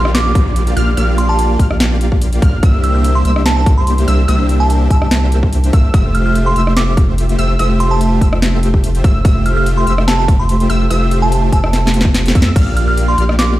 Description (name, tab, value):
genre	future bass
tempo	145 BPM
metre	4/4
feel	swing 54% on 16ths, half-time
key	F major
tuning	A4 = 439 Hz
part	wide unison pluck	arpeggios	0.0-13.6 s	E6 to F6	-25 LUFS	equal	cassette tape, sidechain pumping, digital delay
part	dense compressed supersaw	riff	0.0-13.6 s	A3 to F5	-19 LUFS	equal	sidechain pumping
part	saturated sub bass	bass	0.0-13.6 s	F1 to F2	-14 LUFS	equal	tube saturation, sidechain pumping
part	downlifter	sound effects	0.0-2.6 s	none	-29 LUFS	equal	none
part	glassy synth bell	melody	0.1-13.5 s	A5 to F6	-20 LUFS	right 2 dB	chorus, sidechain pumping, digital delay
part	trap drum kit	drums	0.1-13.5 s	crash cymbal, hi-hat, rim click, snare drum	-19 LUFS	equal	overdrive
part	electronic kick drum	drums	0.4-12.6 s	none	-11 LUFS	equal	overdrive
room	light reverb, digital ambience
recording	played on a big sound system in a bare room, stone room reverb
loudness	-11 LUFS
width	side -15 dB against mid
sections	0.0-13.6 A section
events	drum fill 11.7-12.6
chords	0.0 Bb6; 2.6 C9; 5.9 Fmaj9; 12.6 Bb6